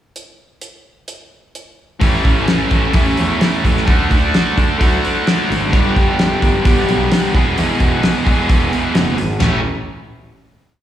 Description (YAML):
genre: classic rock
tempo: 130 BPM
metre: 4/4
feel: straight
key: A major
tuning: A4 = 440 Hz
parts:
  - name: damped 70s drum kit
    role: drums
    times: 0.2-9.5 s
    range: hi-hat, kick drum, ride cymbal, snare drum, toms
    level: -16 LUFS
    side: equal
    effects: none
  - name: picked steel-string acoustic guitar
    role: accompaniment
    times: 2.0-9.6 s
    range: E2 to G#4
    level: -25 LUFS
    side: equal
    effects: none
  - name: distorted electric guitar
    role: riff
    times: 2.0-9.6 s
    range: E2 to G#4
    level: -17 LUFS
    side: equal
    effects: distortion, slapback echo
  - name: fuzz picked electric bass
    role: bass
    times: 2.0-9.6 s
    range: E1 to D3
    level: -19 LUFS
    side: equal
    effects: overdrive
room: light reverb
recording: live gig heard through the venue's PA, recital hall reverb, studio reverb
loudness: -12 LUFS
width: side -11 dB against mid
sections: 0.2-2.0 pickup bar; 2.0-9.4 verse; 9.4-10.8 final chord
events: none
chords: 0.2 N.C.; 2.0 A; 3.9 Dadd9; 5.7 G; 7.3 E; 9.4 A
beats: | 0.16 0.63 1.09 1.56 | 2.02 2.48 2.95 3.42 | 3.88 4.34 4.81 5.27 | 5.73 6.20 6.66 7.12 | 7.58 8.04 8.49 8.95 | 9.41